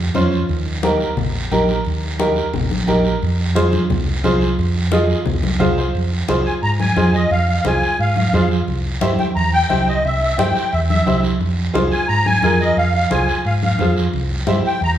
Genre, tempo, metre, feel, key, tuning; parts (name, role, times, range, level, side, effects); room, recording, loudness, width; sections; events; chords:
latin, cumbia; 176 BPM; 4/4; straight; F minor, F harmonic minor from 5.9 s; A4 = 440 Hz
fingered electric bass; bass; 0.0-15.0 s; Bb1 to Ab2; -20 LUFS; equal
bright upright piano; accompaniment; 0.1-14.7 s; Db4 to F5; -21 LUFS; right 1 dB
congas; percussion; 0.1-14.6 s; -22 LUFS; left 1 dB
guiro; percussion; 0.1-15.0 s; -31 LUFS; right 3 dB
musette accordion; melody; 6.5-14.9 s; Eb5 to Bb5; -19 LUFS; equal
wet large studio reverb, RT60 1.2 s; band playing live in one room; -15 LUFS; side -11 dB against mid
0.0-5.9 A section; 5.9-15.0 B section
upright piano fill 5.4-5.9
0.5 Eb; 3.2 Fm; 8.7 C; 11.4 Fm; 14.1 C